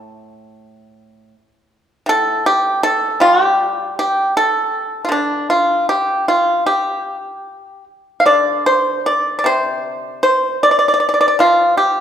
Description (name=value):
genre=chinese traditional, Chinese solo plucked strings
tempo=77 BPM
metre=4/4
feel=uneven beats, rubato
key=D yu mode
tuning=A4 = 440 Hz
part: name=pipa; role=solo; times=0.0-12.0 s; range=A2 to F5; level=-13 LUFS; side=equal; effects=none
room=moderate recital hall reverb, RT60 1.8 s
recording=recorded in a church or concert hall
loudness=-13 LUFS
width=side -9 dB against mid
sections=0.0-12.0 A section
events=none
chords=none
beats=0.62 1.35 | 2.10 2.85 3.60 4.36 | 5.11 5.88 6.66 7.46 | 8.28 9.08 9.86 10.64 | 11.41